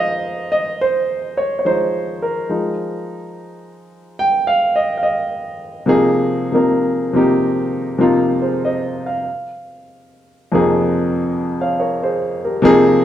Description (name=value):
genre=R&B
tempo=71 BPM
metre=4/4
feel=swing 55% on 16ths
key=F minor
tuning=A4 = 439 Hz
part: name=warm baby grand piano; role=solo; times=0.0-13.0 s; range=F2 to G5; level=-15 LUFS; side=equal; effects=none
room=moderate large studio reverb, RT60 1.2 s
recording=band playing live in one room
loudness=-15 LUFS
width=side -11 dB against mid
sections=0.0-5.9 A section; 5.9-13.0 B section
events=grand piano solo 0.0-5.9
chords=0.0 Fm7; 9.3 Bbsus2/F